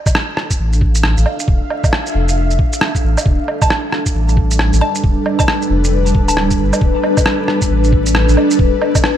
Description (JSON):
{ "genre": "future garage", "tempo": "135 BPM", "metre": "4/4", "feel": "swing 61% on 16ths", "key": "unclear", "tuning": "A4 = 439 Hz", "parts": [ { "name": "ethereal airy pad", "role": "sustained chords", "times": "0.5-9.2 s", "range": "G3 to F5", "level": "-18 LUFS", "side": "left 1 dB", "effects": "ensemble chorus, built-in reverb, sidechain pumping" }, { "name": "electronic kick drum", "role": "drums", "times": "0.1-9.0 s", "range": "none", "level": "-16 LUFS", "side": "equal", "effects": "none" }, { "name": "electronic shaker, woodblock and rim click", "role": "drums", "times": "0.1-9.1 s", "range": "none", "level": "-19 LUFS", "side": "right 1 dB", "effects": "none" }, { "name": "soft dub sub bass", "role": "bass", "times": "0.6-8.7 s", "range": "D1 to A1", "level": "-15 LUFS", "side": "equal", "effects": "sidechain pumping" }, { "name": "mallet-like synth pluck", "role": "melody", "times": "3.6-6.6 s", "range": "A5", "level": "-24 LUFS", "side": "left 1 dB", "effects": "chorus, phaser, cassette tape, diffuse ambient delay" } ], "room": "light reverb", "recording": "vinyl crackle", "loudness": "-12 LUFS", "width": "side -10 dB against mid", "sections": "0.0-9.2 A section", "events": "none", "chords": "0.0 Dmadd9; 3.3 Gadd9/D" }